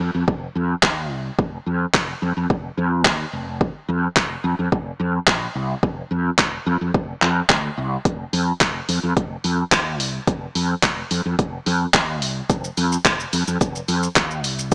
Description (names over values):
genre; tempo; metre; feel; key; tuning
dance-pop; 108 BPM; 4/4; straight; unclear; A4 = 440 Hz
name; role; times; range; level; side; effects
mellow fretless electric bass; bass; 0.0-14.7 s; F1 to F2; -23 LUFS; equal; ensemble chorus, sidechain pumping
deep house drum kit; drums; 0.3-14.7 s; handclaps, hi-hat, kick drum, shaker; -19 LUFS; equal; overdrive
room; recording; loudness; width
light reverb; small speaker sound; -18 LUFS; side -28 dB against mid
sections
0.0-14.7 A section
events
none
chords
none